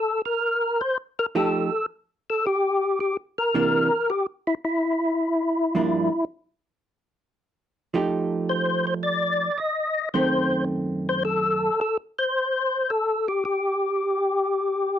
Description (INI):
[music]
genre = jazz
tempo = 109 BPM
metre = 4/4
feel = swing 69% on 8ths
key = unclear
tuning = A4 = 440 Hz
[part]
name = percussive tonewheel organ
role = melody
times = 0.0-15.0 s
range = E4 to Eb5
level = -22 LUFS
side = left 1 dB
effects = slow rotary speaker, overdrive, chorus vibrato
[part]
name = vintage hollow-body jazz guitar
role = accompaniment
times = 1.4-11.7 s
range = F#2 to G4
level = -24 LUFS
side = right 3 dB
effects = none
[sound]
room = little or no reverb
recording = dry, close 1970s-style studio recording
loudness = -22 LUFS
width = side -10 dB against mid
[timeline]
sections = 0.0-15.0 A section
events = none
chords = 0.0 C7(no3); 1.3 F9; 3.5 C9; 5.7 Gm7; 6.8 N.C.; 7.9 F9; 10.1 F#dim7; 12.3 N.C.